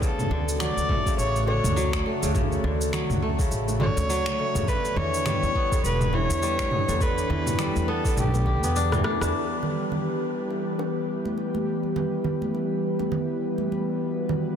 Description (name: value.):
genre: organic downtempo.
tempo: 103 BPM.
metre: 4/4.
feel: swing 58% on 16ths.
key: E dorian.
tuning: A4 = 439 Hz.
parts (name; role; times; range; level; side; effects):
warm kamancheh; melody; 0.0-9.0 s; G4 to D5; -30 LUFS; left 1 dB; digital delay.
airy breathy pad; sustained chords; 0.0-14.6 s; C#3 to B4; -29 LUFS; left 1 dB; chorus, sidechain pumping.
kora; arpeggios; 0.0-10.9 s; C#3 to G4; -30 LUFS; left 1 dB; digital delay.
upright bass; bass; 0.0-9.3 s; E1 to E2; -28 LUFS; equal; sidechain pumping.
deep house drum kit; drums; 0.0-9.3 s; cabasa, finger snaps, rim click, toms; -30 LUFS; equal; overdrive, soft clipping on snare.
electronic kick drum; drums; 0.0-8.6 s; none; -26 LUFS; equal; overdrive.
congas and bongos; percussion; 0.3-14.4 s; none; -33 LUFS; right 4 dB; none.
room: light reverb, small room ambience.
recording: dense, heavily limited modern master.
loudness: -23 LUFS.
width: side -8 dB against mid.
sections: 0.0-9.3 A section; 9.3-14.6 B section.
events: drum fill 8.9-9.3; band accent 9.2.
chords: 0.0 Dmaj7; 4.7 Em7; 9.3 Em.